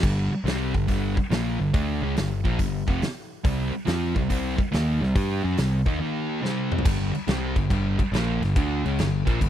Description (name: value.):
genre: blues rock power trio and southern rock.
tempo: 141 BPM.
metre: 4/4.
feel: swing 67% on 8ths.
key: unclear.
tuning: A4 = 436 Hz.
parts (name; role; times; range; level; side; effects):
fuzz guitar; riff; 0.0-9.5 s; F2 to G4; -26 LUFS; equal; distortion.
modern bright picked electric bass; bass; 0.0-9.5 s; F1 to G2; -27 LUFS; equal; none.
huge arena drum kit; drums; 0.0-9.5 s; crash cymbal, hi-hat, kick drum, snare drum, toms; -26 LUFS; equal; none.
room: little or no reverb.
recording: dry, close 1970s-style studio recording.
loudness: -22 LUFS.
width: side -11 dB against mid.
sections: 0.0-6.9 A section; 6.9-9.5 A section.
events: break 6.0-6.9; drum fill 6.4-6.9.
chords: 0.0 G5; 3.4 C5; 6.0 Eb5; 6.4 C5; 6.9 G5.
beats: | 0.03 0.46 0.88 1.31 | 1.74 2.16 2.59 3.02 | 3.44 3.87 4.30 4.72 | 5.15 5.58 6.00 6.43 | 6.85 7.28 7.71 8.13 | 8.55 8.98 9.40.